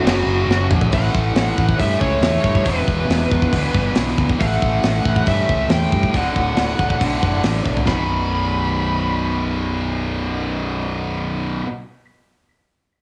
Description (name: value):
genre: heavy metal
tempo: 138 BPM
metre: 4/4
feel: straight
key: B minor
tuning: A4 = 438 Hz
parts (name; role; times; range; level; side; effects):
- high-gain lead guitar; melody; 0.0-11.6 s; F#4 to B5; -26 LUFS; equal; distortion, cassette tape, analog delay
- tight distorted guitar; riff; 0.0-11.7 s; B1 to A3; -24 LUFS; equal; distortion
- fuzz fingered electric bass; bass; 0.0-11.6 s; B0 to G2; -24 LUFS; equal; overdrive
- tight metal drum kit; drums; 0.1-8.0 s; crash cymbal, hi-hat, kick drum, snare drum, toms; -23 LUFS; equal; cassette tape
room: light reverb, small room ambience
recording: home recording on cassette, studio reverb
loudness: -19 LUFS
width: mono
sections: 0.9-7.9 A section; 7.9-11.4 B section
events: drum fill 0.5-0.9, 7.7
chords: 0.1 F#; 0.9 A; 2.7 E5; 4.4 A5; 6.1 D; 7.9 B5